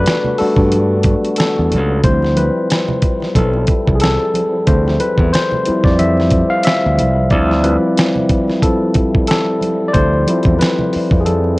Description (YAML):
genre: R&B, neo-soul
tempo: 91 BPM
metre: 4/4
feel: swing 56% on 16ths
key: D dorian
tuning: A4 = 439 Hz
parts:
  - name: overdriven tine electric piano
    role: accompaniment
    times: 0.0-11.6 s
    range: F3 to F5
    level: -15 LUFS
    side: left 1 dB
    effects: none
  - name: percussive tonewheel organ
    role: sustained chords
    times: 0.0-11.6 s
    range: F3 to F#4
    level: -24 LUFS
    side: right 2 dB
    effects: slow rotary speaker, overdrive
  - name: modern bright fingered electric bass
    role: bass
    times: 0.0-11.6 s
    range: B1 to G2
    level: -16 LUFS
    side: equal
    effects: tube saturation
  - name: congas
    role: percussion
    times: 0.0-11.6 s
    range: none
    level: -27 LUFS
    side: right 3 dB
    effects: none
  - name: dusty soul sampler-style drum kit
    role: drums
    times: 0.1-11.4 s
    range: hi-hat, kick drum, snare drum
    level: -16 LUFS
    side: equal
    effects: cassette tape
room: light reverb, digital ambience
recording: home recording on cassette, nothing above 10.5 kHz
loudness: -12 LUFS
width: side -21 dB against mid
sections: 0.0-11.6 A section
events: tine electric piano solo 0.0-11.6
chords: 0.0 Em11 (rootless); 2.0 Dm11